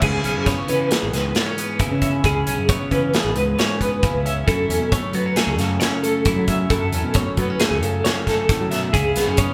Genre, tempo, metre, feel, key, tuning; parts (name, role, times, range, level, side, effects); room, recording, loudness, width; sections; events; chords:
math rock and midwest emo; 135 BPM; 5/4; straight; A4 = 441 Hz
twelve-string electric guitar; accompaniment; 0.0-9.5 s; F#2 to E4; -27 LUFS; equal; phaser
twelve-string electric guitar; arpeggios; 0.0-9.5 s; G#4 to E5; -26 LUFS; equal; tremolo
growling fingered electric bass; bass; 0.0-9.5 s; G#1 to F#3; -27 LUFS; equal; overdrive
modern studio drum kit; drums; 0.0-9.5 s; crash cymbal, hi-hat, kick drum, snare drum; -24 LUFS; equal
moderate large studio reverb, RT60 1.0 s; band playing live in one room; -20 LUFS; mono
0.0-9.5 A section
0.0 C#m7; 4.5 F#m7; 8.9 C#m7